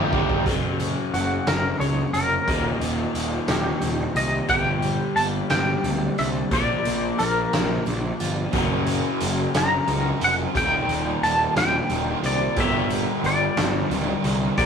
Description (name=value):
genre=quiet-loud alternative rock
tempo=60 BPM (dotted quarters)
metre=6/8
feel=straight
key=unclear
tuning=A4 = 441 Hz
part: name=overdriven electric guitar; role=riff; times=0.0-14.7 s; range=Eb2 to G4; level=-27 LUFS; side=left 4 dB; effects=none
part: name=overdriven electric guitar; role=riff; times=0.0-0.5 s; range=Eb2 to G4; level=-30 LUFS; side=right 1 dB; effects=none
part: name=raw garage guitar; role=riff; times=0.0-0.5, 8.5-14.7 s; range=Eb2 to Bb4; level=-28 LUFS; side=right 4 dB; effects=overdrive, tremolo
part: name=fuzz picked electric bass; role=bass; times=0.0-14.7 s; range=D1 to C#2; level=-27 LUFS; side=right 1 dB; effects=overdrive
part: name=raw garage drum kit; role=drums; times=0.1-14.7 s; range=hi-hat, kick drum, snare drum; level=-27 LUFS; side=right 1 dB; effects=none
part: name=picked steel-string acoustic guitar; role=arpeggios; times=0.5-8.5 s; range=Eb2 to F4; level=-31 LUFS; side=right 4 dB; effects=none
part: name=twangy electric guitar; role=melody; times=1.1-14.7 s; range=F#4 to A#5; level=-24 LUFS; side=left 1 dB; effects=tremolo
room=moderate studio reverb, RT60 0.6 s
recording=rough rehearsal-room recording, tube saturation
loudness=-20 LUFS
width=side -7 dB against mid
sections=0.5-14.7 A section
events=drum fill 0.0-0.5; clean electric guitar solo 0.5-14.7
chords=0.5 F#; 2.5 Eb; 4.5 Gm; 6.5 Bb; 8.5 F#; 10.6 Eb; 12.6 Gm